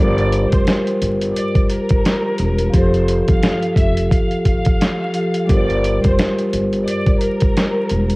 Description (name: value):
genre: hip hop, boom-bap hip-hop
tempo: 87 BPM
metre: 4/4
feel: swing 57% on 16ths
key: unclear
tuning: A4 = 442 Hz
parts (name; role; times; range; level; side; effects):
- warm studio violin section; melody; 0.0-8.2 s; Bb4 to F5; -25 LUFS; equal; high-pass filter, low-pass filter, cassette tape
- vibraphone with medium mallets; accompaniment; 0.0-8.2 s; F3 to C5; -19 LUFS; equal; high-pass filter, low-pass filter, cassette tape
- upright bass; bass; 0.0-8.2 s; E1 to G1; -21 LUFS; equal; none
- boom bap sampler-style drum kit; drums; 0.2-8.2 s; hi-hat, kick drum, snare drum; -17 LUFS; equal; cassette tape
room: light reverb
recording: home recording on cassette, vinyl crackle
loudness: -14 LUFS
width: side -24 dB against mid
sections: 0.0-8.2 A section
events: none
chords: 0.0 Gm7; 2.7 Fadd9; 5.5 Gm7